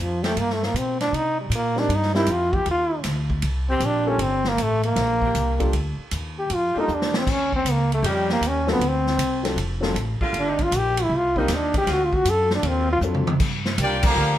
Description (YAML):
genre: jazz, big band swing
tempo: 156 BPM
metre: 4/4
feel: swing 66% on 8ths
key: G minor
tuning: A4 = 440 Hz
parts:
  - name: bright trombone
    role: melody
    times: 0.0-13.0 s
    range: F3 to A4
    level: -22 LUFS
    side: equal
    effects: none
  - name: upright bass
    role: bass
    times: 0.0-14.4 s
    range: E#1 to C3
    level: -25 LUFS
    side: equal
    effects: none
  - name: warm saxophone section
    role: sustained chords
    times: 0.2-12.9 s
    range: C3 to G4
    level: -31 LUFS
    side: equal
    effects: none
  - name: swinging big-band drum kit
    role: drums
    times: 0.2-14.1 s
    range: crash cymbal, hi-hat, kick drum, ride cymbal, snare drum, toms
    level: -27 LUFS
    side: equal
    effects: none
  - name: warm concert grand piano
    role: accompaniment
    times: 1.8-13.3 s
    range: F#3 to Bb4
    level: -28 LUFS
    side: left 2 dB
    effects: none
  - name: clear trumpet section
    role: melody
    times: 13.8-14.4 s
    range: F4 to Bb5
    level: -22 LUFS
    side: left 1 dB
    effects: none
  - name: clear trombone section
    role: second line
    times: 13.8-14.4 s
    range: D3 to G4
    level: -25 LUFS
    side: right 3 dB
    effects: none
room: light reverb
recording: none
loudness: -20 LUFS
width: side -12 dB against mid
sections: 0.0-13.4 A section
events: trombone solo 0.0-13.4; drum fill 6.9-7.3, 13.0-13.4; band accent 14.0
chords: 0.0 Gm7; 1.1 Cm7; 4.2 Gm7; 7.3 Eb7; 8.8 D7#9; 10.3 Gm7; 11.1 Cm7; 11.9 D7#9; 13.4 Gm7